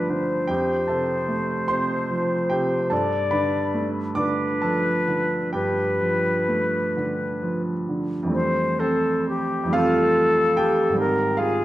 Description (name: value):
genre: classical, impressionist duo for flute and grand piano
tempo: 41-52 BPM (dotted quarters)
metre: 6/8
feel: rubato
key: F lydian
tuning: A4 = 440 Hz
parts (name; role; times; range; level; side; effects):
- concert flute; melody; 0.0-11.6 s; G4 to D5; -23 LUFS; left 2 dB; none
- clear grand piano; accompaniment; 0.0-11.6 s; F2 to D6; -23 LUFS; right 2 dB; none
room: wet recital hall reverb, RT60 1.4 s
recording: none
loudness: -20 LUFS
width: side -15 dB against mid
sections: 0.0-8.3 A section; 8.3-11.6 B section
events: none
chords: 0.5 F; 2.9 G9; 8.3 Fmaj9; 11.0 Abmaj7